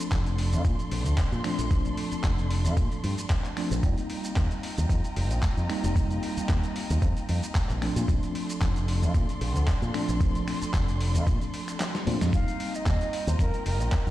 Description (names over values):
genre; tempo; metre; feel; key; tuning
nu-disco, nu disco; 113 BPM; 4/4; swing 54% on 16ths; unclear; A4 = 440 Hz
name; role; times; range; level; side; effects
mellow tine electric piano; accompaniment; 0.0-14.1 s; F3 to Eb4; -33 LUFS; equal; medium stereo tremolo, low-pass filter
dark studio violin section; sustained chords; 0.0-14.1 s; F4 to C6; -39 LUFS; equal; sidechain pumping
dusty soul sampler-style drum kit; drums; 0.0-14.1 s; finger snaps, handclaps, hi-hat, shaker, snare drum; -36 LUFS; equal; overdrive
fingered electric bass with an envelope filter; bass; 0.1-14.1 s; F1 to Bb2; -27 LUFS; equal; sidechain pumping
electronic kick drum; drums; 0.1-14.0 s; none; -26 LUFS; equal; overdrive
mellow silver concert flute; melody; 12.3-14.1 s; Bb4 to F5; -34 LUFS; right 1 dB; digital delay
room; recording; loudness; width
little or no reverb; played on a big sound system in a bare room, stone room reverb; -24 LUFS; side -15 dB against mid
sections
0.0-14.1 A section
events
filter sweep on tine electric piano 0.0-14.1; kick drops out 11.8-12.3; drum fill 11.8-12.3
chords
0.0 Bbmaj9; 3.8 F9sus4; 7.8 Bbmaj9; 12.3 F9sus4